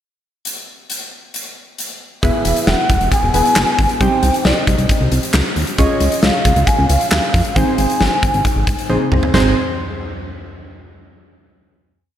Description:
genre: synth-pop.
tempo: 135 BPM.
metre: 4/4.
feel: straight.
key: Ab major.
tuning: A4 = 439 Hz.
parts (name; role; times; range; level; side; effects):
huge arena drum kit; drums; 0.5-9.4 s; handclaps, hi-hat, kick drum, snare drum, toms; -18 LUFS; equal; none.
breathy mellow long shakuhachi; melody; 2.2-8.9 s; Eb5 to Ab5; -19 LUFS; equal; tape echo.
warm analog keys; accompaniment; 2.2-9.5 s; B3 to Db5; -20 LUFS; right 1 dB; chorus.
chorused synth bass; bass; 2.2-9.5 s; E1 to F2; -17 LUFS; equal; none.
room: wet lush hall reverb, RT60 2.1 s.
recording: dreamy mix soaked in reverb.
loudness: -13 LUFS.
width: side -10 dB against mid.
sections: 0.5-2.2 pickup bar; 2.2-9.3 chorus; 9.3-11.1 final chord.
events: drum fill 8.9-9.3.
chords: 0.5 N.C.; 2.2 E; 4.0 Cm; 5.8 Dbadd9; 7.6 Ab.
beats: | 0.45 0.90 1.34 1.78 | 2.23 2.67 3.12 3.56 | 4.01 4.45 4.89 5.34 | 5.78 6.23 6.67 7.12 | 7.56 8.01 8.45 8.89 | 9.34.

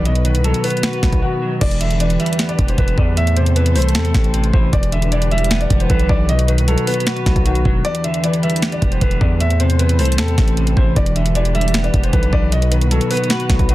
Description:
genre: hip hop, trap.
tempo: 154 BPM.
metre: 4/4.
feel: half-time.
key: E minor.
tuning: A4 = 440 Hz.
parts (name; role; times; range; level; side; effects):
dark grand piano; melody; 0.0-13.7 s; F#4 to E5; -23 LUFS; equal; none.
clean electric guitar; accompaniment; 0.0-13.7 s; E2 to B4; -21 LUFS; equal; analog chorus.
muted symphonic string section; sustained chords; 0.0-13.7 s; D#3 to C5; -28 LUFS; left 1 dB; none.
distorted 808-style bass; bass; 0.0-13.7 s; E1 to E2; -17 LUFS; equal; distortion.
trap drum kit; drums; 0.1-13.7 s; crash cymbal, finger snaps, hi-hat, kick drum, snare drum; -18 LUFS; equal; none.
room: little or no reverb.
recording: dense, heavily limited modern master.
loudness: -14 LUFS.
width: side -16 dB against mid.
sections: 0.0-1.6 A section; 1.6-13.7 B section.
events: break 1.2-1.6, 7.8-8.6.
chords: 0.1 B; 1.6 Em7; 3.2 Am; 4.7 Em7; 6.3 B; 7.8 Em7; 9.4 Am; 11.0 Em7; 12.5 B.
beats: | 0.05 0.44 0.83 1.22 | 1.61 2.00 2.39 2.78 | 3.17 3.56 3.95 4.34 | 4.73 5.12 5.51 5.90 | 6.29 6.68 7.07 7.46 | 7.85 8.24 8.63 9.02 | 9.40 9.79 10.18 10.57 | 10.96 11.35 11.74 12.13 | 12.52 12.91 13.30 13.69.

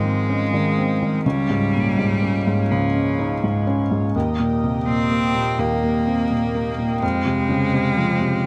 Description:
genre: neoclassical piano and strings.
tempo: 83 BPM.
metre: 4/4.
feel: rubato.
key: unclear.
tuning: A4 = 439 Hz.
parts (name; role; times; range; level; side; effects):
clear cello; second line; 0.0-8.5 s; F3 to C4; -26 LUFS; equal; none.
felt-muted upright piano; accompaniment; 0.0-8.5 s; Db2 to Eb4; -22 LUFS; equal; none.
pedal harmonium; sustained chords; 0.0-8.5 s; Bb3 to F5; -31 LUFS; equal; none.
room: little or no reverb.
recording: close, detailed microphones.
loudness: -20 LUFS.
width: mono.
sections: 0.0-8.5 A section.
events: none.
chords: 0.0 Ab6; 1.2 Db; 4.1 Eb; 7.0 Fmadd9.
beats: 0.52 | 1.25 1.97 2.70 3.42 | 4.15 4.87 5.59 6.31 | 7.03 7.74 8.46.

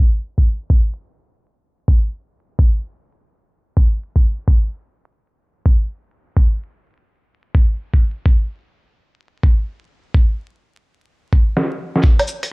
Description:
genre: future garage.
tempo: 127 BPM.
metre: 4/4.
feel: swing 65% on 16ths.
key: none.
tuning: none.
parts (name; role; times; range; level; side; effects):
electronic kick drum; drums; 0.4-12.2 s; none; -13 LUFS; equal; small room ambience.
lo-fi sampler-style drum kit; drums; 11.6-12.5 s; cabasa, hi-hat, snare drum, woodblock; -18 LUFS; equal; low-pass filter on hats, small room ambience, low-pass filter on perc, low-pass filter on snare.
room: little or no reverb.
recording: vinyl crackle, low-pass filter.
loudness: -15 LUFS.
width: side -32 dB against mid.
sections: 0.0-12.0 A section.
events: filter sweep 0.0-12.0; drum fill 11.6-12.0.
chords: none.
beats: 0.23 | 0.70 1.17 1.65 2.12 | 2.59 3.06 3.54 4.01 | 4.48 4.95 5.42 5.90 | 6.37 6.84 7.32 7.79 | 8.26 8.73 9.21 9.68 | 10.15 10.62 11.09 11.57 | 12.04.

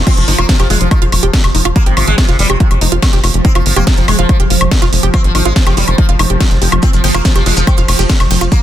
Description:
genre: psychedelic trance.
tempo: 142 BPM.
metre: 4/4.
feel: straight.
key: F minor.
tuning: A4 = 442 Hz.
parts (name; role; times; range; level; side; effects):
swarming drone; sustained chords; 0.0-8.6 s; F3; -20 LUFS; equal; built-in reverb, sidechain pumping.
tight sequencer bass; bass; 0.0-8.5 s; F1 to Ab1; -14 LUFS; equal; none.
sitar; melody; 0.1-8.6 s; C3 to C4; -20 LUFS; equal; phaser, sidechain pumping, ping-pong delay.
woody wave-folded pluck; riff; 0.1-8.4 s; Eb4 to G5; -21 LUFS; moving between left 1 dB and right 5 dB; chorus, auto-pan, sidechain pumping, digital delay.
drum and bass drum kit; drums; 0.1-8.6 s; crash cymbal, hi-hat, ride cymbal, snare drum, woodblock; -17 LUFS; equal; overdrive.
electronic kick drum; drums; 0.1-8.6 s; none; -12 LUFS; equal; overdrive.
maracas; percussion; 6.8-8.6 s; none; -24 LUFS; left 3 dB; none.
room: digital ambience.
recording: dense, heavily limited modern master.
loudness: -9 LUFS.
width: side -12 dB against mid.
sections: 0.1-8.6 A section.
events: band accent 0.0; drop 0.1-8.6.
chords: 0.1 F5.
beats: | 0.07 0.49 0.91 1.33 | 1.76 2.18 2.60 3.02 | 3.45 3.87 4.29 4.71 | 5.14 5.56 5.98 6.41 | 6.83 7.25 7.67 8.10 | 8.52.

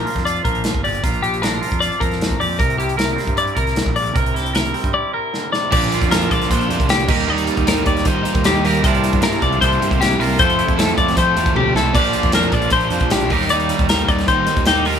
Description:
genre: math rock and midwest emo.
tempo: 154 BPM.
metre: 4/4.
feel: straight.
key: unclear.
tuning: A4 = 438 Hz.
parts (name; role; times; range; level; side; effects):
twangy electric guitar; accompaniment; 0.0-15.0 s; F2 to Bb4; -24 LUFS; right 9 dB; none.
twelve-string electric guitar; arpeggios; 0.0-15.0 s; G4 to D5; -20 LUFS; left 6 dB; none.
fuzz fingered electric bass; bass; 0.0-15.0 s; G1 to F3; -23 LUFS; equal; overdrive.
modern studio drum kit; drums; 0.1-15.0 s; crash cymbal, hi-hat, kick drum, snare drum, toms; -20 LUFS; equal; none.
overdriven electric guitar; riff; 5.7-15.0 s; F2 to E4; -20 LUFS; right 2 dB; none.
room: light reverb.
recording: band playing live in one room.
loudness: -15 LUFS.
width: side -8 dB against mid.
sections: 0.0-5.7 A section; 5.7-15.0 B section.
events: drum fill 5.3-5.7, 11.6-11.9.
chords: 0.0 Bb6; 2.6 C7; 5.7 Bb69; 7.1 Ebmaj7; 8.8 C9sus4; 10.4 Fmaj7; 11.9 Bb69; 13.3 Ebmaj7.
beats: 0.26 0.65 | 1.04 1.43 1.82 2.21 | 2.60 2.99 3.38 3.77 | 4.16 4.55 4.94 5.33 | 5.72 6.11 6.50 6.89 | 7.28 7.67 8.05 8.44 | 8.83 9.22 9.61 10.00 | 10.39 10.78 11.16 11.55 | 11.94 12.33 12.72 13.11 | 13.49 13.88 14.27 14.66.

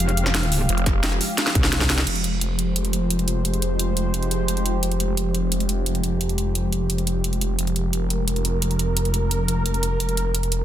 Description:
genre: dark technical drum and bass.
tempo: 174 BPM.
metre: 4/4.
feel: straight.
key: F minor.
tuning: A4 = 439 Hz.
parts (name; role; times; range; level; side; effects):
sweeping resonant pad; sustained chords; 0.0-10.6 s; F3 to F5; -26 LUFS; right 1 dB; chorus, sidechain pumping.
metallic wobble bass; bass; 0.0-2.1 s; F1 to C2; -21 LUFS; equal; distortion, chorus.
drum and bass drum kit; drums; 0.0-10.6 s; crash cymbal, hi-hat, snare drum; -25 LUFS; right 1 dB; overdrive.
phased detuned saw bass; bass; 0.7-10.6 s; F1; -23 LUFS; equal; phaser.
electronic kick drum; drums; 0.9-1.9 s; none; -23 LUFS; equal; none.
room: little or no reverb.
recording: dense, heavily limited modern master.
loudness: -20 LUFS.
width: side -11 dB against mid.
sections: 0.0-2.1 A section; 2.1-10.6 B section.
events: drop 0.0-2.1; drum fill 1.4-2.1.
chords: 0.0 Fmadd9.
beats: 0.00 0.35 | 0.69 1.04 1.38 1.73 | 2.07 2.42 2.76 3.10 | 3.45 3.79 4.14 4.48 | 4.83 5.17 5.52 5.86 | 6.21 6.55 6.90 7.24 | 7.59 7.93 8.28 8.62 | 8.97 9.31 9.66 10.00 | 10.35.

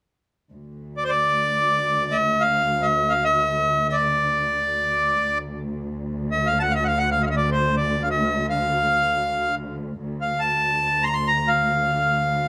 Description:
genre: Arabic maqam ensemble.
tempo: free time.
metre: none.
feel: none.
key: D maqam saba.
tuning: A4 = 440 Hz.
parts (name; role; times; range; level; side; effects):
dark symphonic cello section; drone; 0.5-12.5 s; D2; -30 LUFS; equal; none.
accordion; melody; 1.0-12.5 s; C5 to C6; -22 LUFS; equal; slapback echo.
room: light reverb.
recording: recorded outdoors, with no room sound.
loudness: -22 LUFS.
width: mono.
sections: 0.5-12.5 A section.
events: none.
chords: none.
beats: free time.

